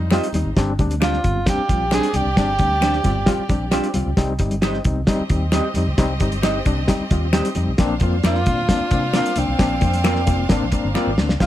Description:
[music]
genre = uptempo 1960s-style soul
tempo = 133 BPM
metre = 4/4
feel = straight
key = unclear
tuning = A4 = 443 Hz
[part]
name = breathy tenor saxophone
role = melody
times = 0.0-4.0, 8.3-11.5 s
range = C4 to Ab4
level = -23 LUFS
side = right 1 dB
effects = tape echo
[part]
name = bright studio violin section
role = second line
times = 0.0-11.5 s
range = G3 to F5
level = -30 LUFS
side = equal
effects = none
[part]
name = overdriven reed electric piano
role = accompaniment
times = 0.0-11.5 s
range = G3 to Bb5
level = -24 LUFS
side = left 3 dB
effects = medium tremolo
[part]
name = vintage muted fingered electric bass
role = bass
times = 0.0-11.5 s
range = F1 to C3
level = -23 LUFS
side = equal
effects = none
[part]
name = electric guitar through a small old amp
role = stabs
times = 0.1-11.1 s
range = C4 to Eb5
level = -25 LUFS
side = right 4 dB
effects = none
[part]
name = cloth-damped thuddy drum kit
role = drums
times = 0.1-11.5 s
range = hi-hat, kick drum, snare drum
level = -20 LUFS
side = equal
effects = none
[part]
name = congas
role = percussion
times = 0.1-11.3 s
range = none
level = -34 LUFS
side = right 1 dB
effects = none
[part]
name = finger snap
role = percussion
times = 0.1-11.1 s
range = none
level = -30 LUFS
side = left 5 dB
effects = none
[sound]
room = light reverb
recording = none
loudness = -17 LUFS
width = side -13 dB against mid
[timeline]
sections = 0.0-11.4 A section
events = reed electric piano fill 10.5-11.4; drum fill 10.9-11.4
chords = 0.0 Cm; 0.6 Gsus4; 4.2 Cm; 7.8 Bbadd9

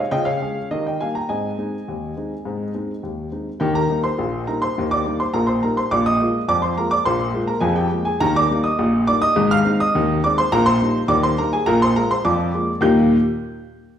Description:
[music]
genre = ragtime piano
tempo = 104 BPM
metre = 2/4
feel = straight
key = Ab major, Eb major from 3.6 s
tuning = A4 = 438 Hz
[part]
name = warm upright piano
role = solo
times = 0.0-13.1 s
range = Ab1 to G6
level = -17 LUFS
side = equal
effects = none
[sound]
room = wet large studio reverb, RT60 1.3 s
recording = band playing live in one room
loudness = -17 LUFS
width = side -9 dB against mid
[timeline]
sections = 0.0-3.6 A section; 3.6-12.8 B section; 12.8-14.0 C section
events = none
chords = 0.1 Db; 0.7 Eb; 1.3 Ab; 3.6 Eb; 5.9 Bb7; 8.2 Eb; 9.4 Ab; 10.5 Eb/Bb; 11.7 Bb7; 12.8 Eb

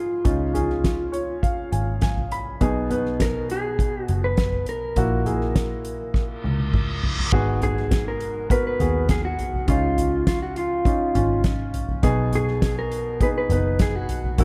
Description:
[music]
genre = piano-driven pop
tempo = 102 BPM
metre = 4/4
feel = straight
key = unclear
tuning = A4 = 440 Hz
[part]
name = mellow electric guitar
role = melody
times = 0.0-14.4 s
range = E4 to B4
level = -29 LUFS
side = equal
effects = spring reverb
[part]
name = dark baby grand piano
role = accompaniment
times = 0.0-14.4 s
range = G#2 to B5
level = -29 LUFS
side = equal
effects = none
[part]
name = soft-mallet drum kit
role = drums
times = 0.2-14.4 s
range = crash cymbal, hi-hat, kick drum, snare drum, toms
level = -26 LUFS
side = equal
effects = none
[part]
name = vintage muted picked electric bass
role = bass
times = 0.3-14.4 s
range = F#1 to D#2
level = -29 LUFS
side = equal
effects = none
[part]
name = reverse cymbal and impact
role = sound effects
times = 6.4-9.7 s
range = none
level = -34 LUFS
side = equal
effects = none
[sound]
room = small room ambience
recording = dry, close 1970s-style studio recording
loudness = -23 LUFS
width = mono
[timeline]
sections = 0.0-7.3 A section; 7.3-14.4 B section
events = grand piano fill 0.8-2.6; drum fill 6.1-7.3; reverse cymbal 6.4-7.3; impact 7.3-9.7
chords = 0.3 C#add9; 2.6 B6; 5.0 F#7/A#; 7.3 G#m7; 9.7 C#add9; 12.0 B6

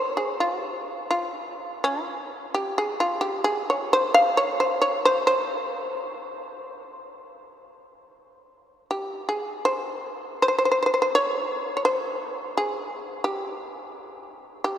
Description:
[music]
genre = japanese traditional, Japanese chamber music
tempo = 77-89 BPM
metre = 4/4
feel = rubato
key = C miyako bushi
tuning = A4 = 441 Hz
[part]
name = shamisen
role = solo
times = 0.0-14.8 s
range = F4 to F5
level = -23 LUFS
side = equal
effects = none
[sound]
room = wet cathedral reverb, RT60 6.0 s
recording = in a vast, echoing space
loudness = -22 LUFS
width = side -10 dB against mid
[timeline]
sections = 0.0-9.7 A section; 9.7-14.8 B section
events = none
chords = none

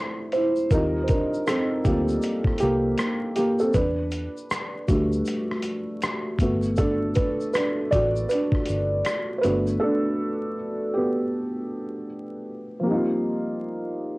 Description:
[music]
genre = lo-fi hip hop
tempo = 79 BPM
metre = 4/4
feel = swing 63% on 16ths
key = unclear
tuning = A4 = 440 Hz
[part]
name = felt-muted upright piano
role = accompaniment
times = 0.0-14.2 s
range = F3 to D5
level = -23 LUFS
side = equal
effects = cassette tape, low-pass filter
[part]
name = dusty soul sampler-style drum kit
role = drums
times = 0.3-9.7 s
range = hi-hat, kick drum, rim click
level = -26 LUFS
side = equal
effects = none
[part]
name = tube shaker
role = percussion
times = 0.3-9.8 s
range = none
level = -48 LUFS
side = left 4 dB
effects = none
[part]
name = vintage muted fingered electric bass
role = bass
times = 0.7-9.8 s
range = G1 to E2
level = -28 LUFS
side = equal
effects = none
[sound]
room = moderate booth ambience, RT60 0.2 s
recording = home recording on cassette, vinyl crackle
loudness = -22 LUFS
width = side -22 dB against mid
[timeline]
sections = 0.0-12.9 A section; 12.9-14.2 B section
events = break 0.0-0.7, 9.8-12.9; felt piano solo 0.0-12.9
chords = 0.0 C6; 0.7 Eb6; 3.7 Em9; 6.4 Gmaj7; 12.9 Eb6

